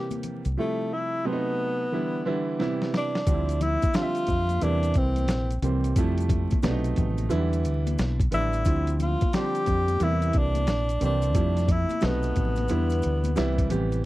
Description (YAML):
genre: hip hop, jazz-hop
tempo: 89 BPM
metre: 4/4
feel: swing 64% on 16ths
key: unclear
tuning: A4 = 439 Hz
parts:
  - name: breathy tenor saxophone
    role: melody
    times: 0.0-13.7 s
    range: A3 to G4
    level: -28 LUFS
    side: left 1 dB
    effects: none
  - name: clear upright piano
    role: accompaniment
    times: 0.0-14.0 s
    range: C3 to E5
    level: -29 LUFS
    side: right 3 dB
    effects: none
  - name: lo-fi sampler-style drum kit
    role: drums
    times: 0.1-14.0 s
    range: hi-hat, kick drum, snare drum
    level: -27 LUFS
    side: equal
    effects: overdrive
  - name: congas and maracas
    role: percussion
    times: 0.1-14.0 s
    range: none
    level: -38 LUFS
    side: left 7 dB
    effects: none
  - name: deep dub fingered electric bass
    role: bass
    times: 0.5-14.0 s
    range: A1 to F2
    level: -26 LUFS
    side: equal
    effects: none
room: little or no reverb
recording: dry, close 1970s-style studio recording, vinyl crackle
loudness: -23 LUFS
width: side -17 dB against mid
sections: 0.0-3.3 A section; 3.3-14.1 B section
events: silent gap 0.6-3.3; drum fill 2.6-3.3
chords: 0.0 C7; 0.6 Fmaj9; 1.2 B7b9; 1.9 Em7; 2.6 Cmaj7; 3.3 Dm11; 4.6 C7; 6.0 Fmaj9; 6.6 B7b9; 7.3 Em7; 8.7 Dm11; 10.0 C7; 11.4 Fmaj9; 12.0 B7b9; 12.7 Em7; 13.4 Cmaj7